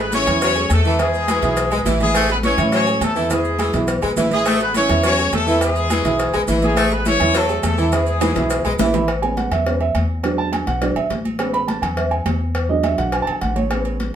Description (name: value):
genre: latin, salsa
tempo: 208 BPM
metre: 4/4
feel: straight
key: A major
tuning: A4 = 440 Hz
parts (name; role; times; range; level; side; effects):
- bright horn section; melody; 0.0-8.8 s; G#3 to C#5; -20 LUFS; left 1 dB; none
- dark upright piano; accompaniment; 0.0-14.2 s; E3 to B5; -21 LUFS; right 4 dB; none
- upright bass; bass; 0.0-14.1 s; A1 to A2; -22 LUFS; left 1 dB; none
- bright saxophone section; second line; 0.1-8.9 s; E3 to A3; -23 LUFS; left 2 dB; none
- congas; percussion; 0.1-14.1 s; none; -28 LUFS; left 1 dB; none
- cowbell and bongos; percussion; 0.1-14.1 s; none; -26 LUFS; left 3 dB; none
- maracas; percussion; 0.1-9.1 s; none; -34 LUFS; right 7 dB; none
- agogo bells and timbales; percussion; 0.3-14.0 s; none; -30 LUFS; right 4 dB; none
room: wet studio reverb, RT60 0.6 s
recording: band playing live in one room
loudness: -16 LUFS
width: side -9 dB against mid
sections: 0.0-9.1 A section; 9.1-14.2 B section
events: drum fill 8.2-9.1; upright piano solo 9.1-14.2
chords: 0.0 Amaj7; 1.0 E; 2.1 Amaj7; 3.3 E; 4.5 Amaj7; 5.6 E; 6.8 Amaj7; 7.9 E; 9.1 Amaj7; 10.2 E7; 11.4 Amaj7; 12.5 E7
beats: 0.12 0.41 0.70 | 0.99 1.28 1.57 1.86 | 2.15 2.44 2.73 3.01 | 3.30 3.59 3.88 4.17 | 4.46 4.75 5.04 5.32 | 5.61 5.90 6.19 6.48 | 6.77 7.06 7.35 7.63 | 7.92 8.21 8.50 8.79 | 9.08 9.37 9.66 9.95 | 10.24 10.53 10.81 11.10 | 11.39 11.68 11.97 12.26 | 12.55 12.84 13.13 13.42 | 13.71 13.99